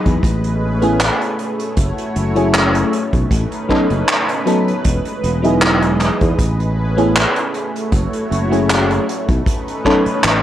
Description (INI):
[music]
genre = vaporwave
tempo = 78 BPM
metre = 4/4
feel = swing 53% on 16ths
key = unclear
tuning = A4 = 441 Hz
[part]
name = FM electric piano with soft pad layer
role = accompaniment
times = 0.0-10.0 s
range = F#3 to A4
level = -18 LUFS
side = equal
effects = analog chorus, cassette tape, analog delay
[part]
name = lush unison pad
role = sustained chords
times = 0.0-10.4 s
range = E3 to D#5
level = -22 LUFS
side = equal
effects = chorus, phaser
[part]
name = sustaining fretless electric bass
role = bass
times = 0.1-10.4 s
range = E1 to E2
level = -19 LUFS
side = equal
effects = lush chorus
[part]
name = kick drum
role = drums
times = 0.1-10.0 s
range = none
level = -18 LUFS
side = equal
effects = none
[part]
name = unplugged drum kit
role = drums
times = 0.1-10.4 s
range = handclaps, hi-hat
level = -19 LUFS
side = equal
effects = none
[sound]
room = moderate spring reverb, RT60 1.8 s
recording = echo-heavy mix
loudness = -14 LUFS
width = side -12 dB against mid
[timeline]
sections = 0.0-10.4 A section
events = none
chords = 0.2 Amaj9; 1.4 F#m7; 2.9 B9; 4.8 Emaj7; 6.4 Amaj9; 7.5 F#m7; 9.1 B9